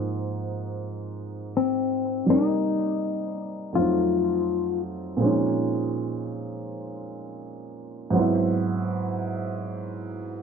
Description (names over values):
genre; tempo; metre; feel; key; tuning
hip hop; free time; none; none; Ab major; A4 = 440 Hz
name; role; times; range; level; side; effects
dark upright piano; accompaniment; 0.0-10.4 s; F2 to D5; -26 LUFS; right 3 dB; low-pass filter
hollow-body jazz guitar; melody; 1.6-4.8 s; C4 to F4; -24 LUFS; left 8 dB; low-pass filter, analog delay
room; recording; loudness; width
moderate echo chamber reverb, RT60 1.3 s; dark, warm production, low-pass filter; -23 LUFS; side -6 dB against mid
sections
0.0-10.4 A section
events
filter sweep 0.0-10.4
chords
0.0 Ab6; 2.3 Cm9; 3.7 F7b9; 5.2 Bbm11; 8.1 Ab7alt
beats
free time